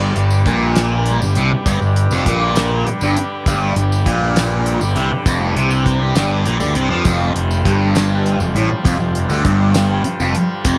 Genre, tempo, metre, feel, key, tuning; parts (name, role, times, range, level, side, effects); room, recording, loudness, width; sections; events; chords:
psychedelic rock; 67 BPM (dotted quarters); 6/8; straight; G mixolydian; A4 = 440 Hz
combo organ; sustained chords; 0.0-10.8 s; D4 to D5; -28 LUFS; equal
fuzz guitar; riff; 0.0-10.8 s; F2 to F3; -20 LUFS; equal; distortion, phaser
fuzz fingered electric bass; bass; 0.0-10.8 s; F1 to F2; -22 LUFS; equal; overdrive
tanpura; drone; 0.0-10.8 s; G2 to G3; -29 LUFS; equal
tambourine; percussion; 0.0-10.8 s; -34 LUFS; equal
damped 70s drum kit; drums; 0.2-10.8 s; hi-hat, kick drum, snare drum; -22 LUFS; equal
light reverb, small room ambience; -16 LUFS; mono
0.0-10.8 A section
0.0 G; 7.1 Fadd9